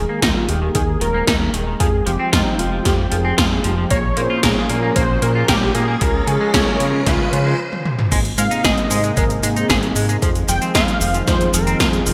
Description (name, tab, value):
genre	synthwave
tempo	114 BPM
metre	4/4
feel	straight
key	F minor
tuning	A4 = 440 Hz
part	unison lead	melody	0.0-12.0 s	Eb4 to G5	-25 LUFS	equal	delay
part	warm analog pad	sustained chords	0.0-12.1 s	C3 to G5	-30 LUFS	equal	none
part	mellow synth brass	stabs	0.0-12.1 s	Ab2 to Db5	-28 LUFS	equal	chorus, delay
part	fat analog bass	bass	0.0-12.1 s	Eb1 to Db3	-23 LUFS	equal	none
part	riser	sound effects	3.7-7.6 s	none	-33 LUFS	equal	none
part	clean electric guitar	riff	0.1-12.1 s	Db3 to Bb4	-28 LUFS	equal	subtle chorus, low-pass filter, delay
part	80s electronic pad drums	drums	0.2-12.1 s	cabasa, crash cymbal, hi-hat, snare drum, toms	-23 LUFS	equal	gated reverb on snare and toms, gated reverb
part	electronic kick drum	drums	0.2-11.9 s	none	-25 LUFS	equal	none
room	moderate lush hall reverb, RT60 1.9 s, digital ambience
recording	bright 1980s-style digital production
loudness	-17 LUFS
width	mono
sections	0.0-8.1 A section; 8.1-12.1 B section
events	stop 7.6-8.1; drum fill 7.7-8.1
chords	0.0 Ebsus4; 1.8 Fmadd9; 3.9 Bbm7; 6.0 Db; 8.1 Abadd9; 10.2 Fm7